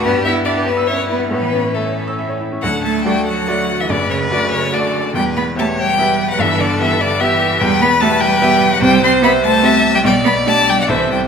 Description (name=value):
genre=quick classical-period movement for piano quartet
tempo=144 BPM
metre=3/4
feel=rubato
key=D major, G major from 7.6 s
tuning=A4 = 436 Hz
part: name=rich violin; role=melody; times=0.0-11.2 s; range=A4 to C6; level=-17 LUFS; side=left 5 dB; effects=none
part: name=rich violin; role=second line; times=0.0-11.3 s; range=C#4 to E5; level=-20 LUFS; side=left 1 dB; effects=none
part: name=bright grand piano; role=accompaniment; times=0.0-11.3 s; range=E1 to E6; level=-18 LUFS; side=equal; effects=none
part: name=clear cello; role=second line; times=0.1-11.2 s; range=C#3 to E4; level=-20 LUFS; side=right 6 dB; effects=none
room=wet recital hall reverb, RT60 1.7 s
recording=minimal, uncompressed stereo recording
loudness=-12 LUFS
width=side -6 dB against mid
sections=0.0-2.6 A section; 2.6-11.3 B section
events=none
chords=0.0 Em/G; 1.3 A; 2.6 D; 3.9 D/F#; 5.2 Em; 6.4 Em/G; 7.6 Em; 8.8 C; 10.0 G/B